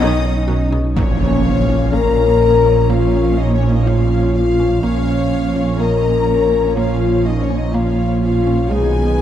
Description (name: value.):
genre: cinematic, hybrid orchestral and electronic film score.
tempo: 124 BPM.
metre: 4/4.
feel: straight.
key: Bb phrygian.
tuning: A4 = 439 Hz.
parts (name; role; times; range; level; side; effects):
rich studio violin section; melody; 0.0-9.2 s; Cb5 to D#6; -32 LUFS; left 3 dB; none.
clear studio violin section; second line; 0.0-9.2 s; Db5 to Bb5; -31 LUFS; left 3 dB; none.
rich symphonic viola section; accompaniment; 0.0-9.2 s; C#3 to Eb4; -28 LUFS; right 1 dB; none.
chorused pulse-width pad; sustained chords; 0.0-9.2 s; Eb3 to C#5; -22 LUFS; equal; none.
dark French horn section; sustained chords; 0.0-9.2 s; C#4 to Bb4; -17 LUFS; left 4 dB; none.
mallet-like synth pluck; arpeggios; 0.0-8.9 s; Ab3 to F#4; -27 LUFS; equal; chorus, tape echo.
rich symphonic cello section; bass; 0.0-9.2 s; Bb2 to D#4; -25 LUFS; right 3 dB; none.
sub bass with octave; bass; 0.0-9.2 s; Bb1 to B1; -21 LUFS; equal; none.
warm symphonic double bass section; bass; 0.0-9.2 s; Bb1 to B1; -20 LUFS; right 4 dB; none.
impact; sound effects; 1.0-2.9 s; none; -21 LUFS; equal; none.
room: moderate scoring stage reverb, RT60 1.9 s.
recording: none.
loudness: -13 LUFS.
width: side -10 dB against mid.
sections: 1.0-9.2 A section.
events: impact 1.0-2.9.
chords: 0.0 Badd9; 1.0 Bbm; 8.7 Abm/Cb.